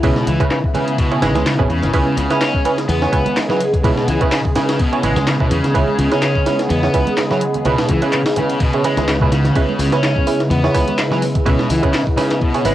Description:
breakbeat, breaks; 126 BPM; 4/4; swing 55% on 16ths; C# minor pentatonic; A4 = 440 Hz
phased analog pad; sustained chords; 0.0-12.7 s; C#3 to G#4; -20 LUFS; equal; phaser, chorus, sidechain pumping
sludgy distorted guitar; riff; 0.0-12.7 s; B2 to C#4; -20 LUFS; left 2 dB; overdrive, tube saturation, tape echo
filtered dub chord stab; stabs; 0.0-12.7 s; C#4 to C#5; -21 LUFS; right 5 dB; chorus, tape echo
modern bright fingered electric bass; bass; 0.0-12.7 s; G#1 to E2; -20 LUFS; left 1 dB
breakbeat sampler-style drum kit; drums; 0.0-12.7 s; hi-hat, kick drum, ride cymbal, snare drum; -20 LUFS; left 1 dB; small room ambience, cassette tape
punchy analog drum machine; drums; 0.0-12.7 s; handclaps, hi-hat; -26 LUFS; left 1 dB; overdrive, small room ambience, cassette tape
congas; percussion; 0.2-12.3 s; -31 LUFS; right 7 dB
moderate booth ambience, RT60 0.2 s; home recording on cassette; -14 LUFS; side -13 dB against mid
0.0-12.7 A section
0.0 C#m7

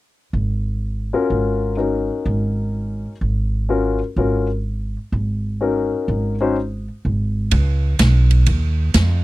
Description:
jazz, big band swing; 125 BPM; 4/4; swing 66% on 8ths; A4 = 438 Hz
upright bass; bass; 0.3-9.2 s; Ab1 to F2; -18 LUFS; right 1 dB
warm grand piano; accompaniment; 1.1-6.6 s; Db4 to C5; -20 LUFS; left 4 dB
swinging big-band drum kit; drums; 7.5-9.1 s; hi-hat, kick drum, ride cymbal, snare drum; -22 LUFS; right 1 dB
little or no reverb; dry, close 1970s-style studio recording; -17 LUFS; side -17 dB against mid
0.0-7.5 A section; 7.5-9.2 B section
0.0 Ab13sus4; 1.8 Ab7sus4; 3.7 Ab13sus4; 5.6 Ab7sus4; 7.5 Db7

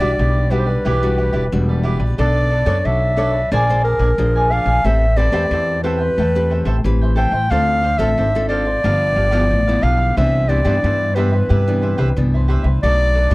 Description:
samba; 90 BPM; 4/4; straight; A4 = 441 Hz
mellow clarinet; melody; 0.0-13.3 s; Bb4 to G5; -19 LUFS; equal
cavaquinho; accompaniment; 0.0-13.3 s; D4 to Ab5; -25 LUFS; right 1 dB
nylon-string guitar; accompaniment; 0.0-13.3 s; G2 to C#5; -23 LUFS; left 2 dB
upright bass; bass; 0.0-13.3 s; E1 to G2; -17 LUFS; equal
little or no reverb; dry, close 1970s-style studio recording, lossy compression artefacts; -14 LUFS; side -21 dB against mid
0.0-13.3 A section
0.0 Em9; 2.2 Bm9; 3.5 Bb9; 4.8 Am9; 7.5 Dm7; 8.8 G13; 10.2 Cmaj9; 12.8 Bm7

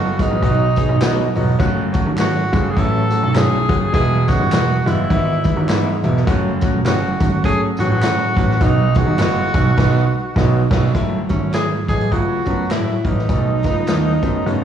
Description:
uptempo 1960s-style soul; 103 BPM; 4/4; swing 59% on 8ths; F# dorian; A4 = 441 Hz
breathy tenor saxophone; melody; 0.0-14.6 s; C#4 to A4; -22 LUFS; right 2 dB; analog delay, slapback echo
clear grand piano; accompaniment; 0.0-14.6 s; E3 to A4; -22 LUFS; left 5 dB; slapback echo
clear concert grand piano; bass; 0.0-14.6 s; E1 to B2; -18 LUFS; right 2 dB
congas; percussion; 0.0-14.6 s; -30 LUFS; right 4 dB
swinging big-band drum kit; drums; 0.2-14.6 s; crash cymbal, hi-hat, kick drum, snare drum; -21 LUFS; right 1 dB; vintage 12-bit sampler grit
tambourine and handclaps; percussion; 0.2-14.6 s; -36 LUFS; right 2 dB; slapback echo
small room reverb; live gig heard through the venue's PA, cassette tape, club ambience, studio reverb; -14 LUFS; side -9 dB against mid
0.0-10.9 A section; 10.9-14.6 B section
band accent 9.8-10.9
0.0 G#m; 1.6 F#m; 3.9 E; 6.3 F#m; 8.6 B; 10.9 F#m7; 13.3 B7

